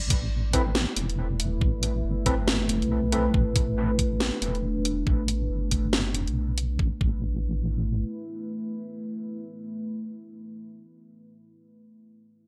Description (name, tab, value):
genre	deep dubstep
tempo	139 BPM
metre	4/4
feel	swing 60% on 16ths, half-time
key	unclear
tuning	A4 = 440 Hz
part	deep dark ambient pad	sustained chords	0.0-10.6 s	A3 to B4	-34 LUFS	equal	chorus, built-in reverb
part	deep soft wobble bass	bass	0.0-8.0 s	E1 to B1	-30 LUFS	equal	chorus
part	electronic kick drum	drums	0.1-7.2 s	none	-27 LUFS	equal	none
part	garage drum kit	drums	0.1-6.7 s	hi-hat, snare drum	-29 LUFS	equal	gated reverb
part	overdriven tine electric piano	stabs	0.5-3.2 s	C4 to B4	-34 LUFS	equal	analog chorus, dub echo
room	light reverb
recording	bright 1980s-style digital production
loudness	-27 LUFS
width	mono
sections	0.0-6.8 A section; 6.8-10.2 B section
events	filter sweep on wobble bass 0.0-6.8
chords	0.0 Asus2